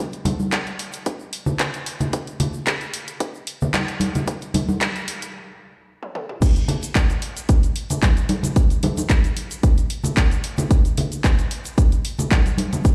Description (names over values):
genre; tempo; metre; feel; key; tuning
nu-disco; 112 BPM; 4/4; swing 53% on 16ths; none; none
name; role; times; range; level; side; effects
house drum kit; drums; 0.1-12.9 s; crash cymbal, handclaps, hi-hat, shaker, toms; -29 LUFS; equal; high-pass filter on hats, high-pass filter on snare, high-pass filter on toms, high-pass filter on cymbals, high-pass filter on perc, high-pass filter on room
tube shaker and congas; percussion; 0.1-12.9 s; none; -27 LUFS; equal; none
electronic kick drum; drums; 0.5-12.9 s; none; -20 LUFS; equal; high-pass filter on kick, high-pass filter on room
room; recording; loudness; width
light reverb; played on a big sound system in a bare room, large studio reverb; -21 LUFS; mono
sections
0.0-6.4 A section; 6.4-12.9 B section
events
build-up 0.0-6.4; stop 5.3-6.4; drum fill 6.0-6.4; drop 6.4-12.9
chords
none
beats
0.53 1.06 1.60 | 2.13 2.67 3.21 3.74 | 4.28 4.81 5.35 5.88 | 6.42 6.96 7.49 8.03 | 8.56 9.10 9.63 10.17 | 10.71 11.24 11.78 12.31 | 12.85